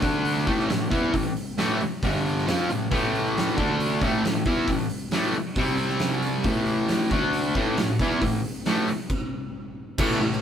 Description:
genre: garage rock duo or trio.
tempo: 136 BPM.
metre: 4/4.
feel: straight.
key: A minor.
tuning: A4 = 441 Hz.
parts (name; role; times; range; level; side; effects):
fuzz guitar; riff; 0.0-10.4 s; G2 to F4; -23 LUFS; equal; distortion.
oversized low-tuned drum kit; drums; 0.0-10.4 s; crash cymbal, hi-hat, kick drum, snare drum; -28 LUFS; equal; none.
room: light reverb.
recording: band playing live in one room.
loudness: -22 LUFS.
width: side -9 dB against mid.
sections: 0.0-10.0 A section.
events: stop 9.1-10.0.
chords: 0.0 D5; 0.5 A5; 2.0 G5; 2.5 Am; 3.6 D5; 4.0 A5; 5.6 C5; 6.5 A5; 7.1 D5; 7.6 A5; 9.1 N.C..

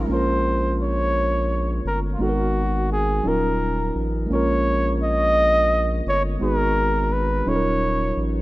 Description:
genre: R&B.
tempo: 57 BPM (dotted quarters).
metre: 6/8.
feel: straight.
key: Bb phrygian.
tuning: A4 = 440 Hz.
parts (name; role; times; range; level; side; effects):
warm flugelhorn; melody; 0.0-8.3 s; F4 to Eb5; -22 LUFS; equal; none.
tine electric piano; accompaniment; 0.0-8.4 s; Gb3 to Bb4; -25 LUFS; right 1 dB; overdrive.
saturated sub bass; bass; 0.0-8.4 s; Eb1 to Bb1; -24 LUFS; equal; none.
room: light reverb.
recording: rough home demo mix.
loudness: -19 LUFS.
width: side -18 dB against mid.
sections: 0.1-8.4 A section.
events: none.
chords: 0.1 Bbm9; 2.2 Abm9; 3.2 Ebm9; 4.3 Bbm7; 6.4 Abm9; 7.5 Ebm9.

